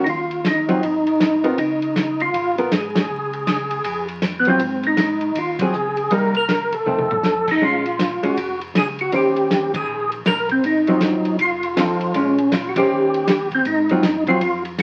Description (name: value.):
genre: soul jazz organ trio.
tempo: 159 BPM.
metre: 4/4.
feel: swing 63% on 8ths.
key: Ab mixolydian.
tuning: A4 = 442 Hz.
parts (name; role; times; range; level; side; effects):
percussive tonewheel organ; melody; 0.0-14.6 s; Cb4 to Bb4; -21 LUFS; equal; slow rotary speaker, chorus vibrato.
hollow-body jazz guitar; accompaniment; 0.0-14.4 s; Eb3 to C5; -24 LUFS; equal; none.
mellow tonewheel organ; bass; 0.0-14.8 s; F1 to Ab2; -37 LUFS; equal; chorus vibrato, slow rotary speaker.
warm soul drum kit; drums; 0.1-14.8 s; crash cymbal, hi-hat, kick drum, ride cymbal, snare drum, toms; -27 LUFS; equal; none.
room: wet club reverb, RT60 0.7 s.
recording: very old 78 rpm record, vinyl crackle.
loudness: -19 LUFS.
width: mono.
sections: 0.0-13.7 A section; 13.7-14.8 A section.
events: band accent 2.9, 5.5, 9.7, 12.7; drum fill 6.9-7.2.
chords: 0.1 Ebm; 0.8 Absus2; 1.6 Dbadd9; 4.6 Ab6; 6.1 Cm7; 6.9 F7; 7.6 Bbm7; 9.1 Eb6; 10.6 Ab6; 11.4 F7; 12.1 Bbm7; 12.9 Eb6; 13.7 Ab13.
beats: | 0.07 0.45 0.82 1.20 | 1.58 1.96 2.33 2.71 | 3.09 3.47 3.85 4.22 | 4.60 4.98 5.35 5.73 | 6.11 6.49 6.86 7.24 | 7.62 8.00 8.37 8.75 | 9.13 9.51 9.88 10.26 | 10.64 11.02 11.39 11.77 | 12.15 12.53 12.90 13.28 | 13.66 14.04 14.41 14.79.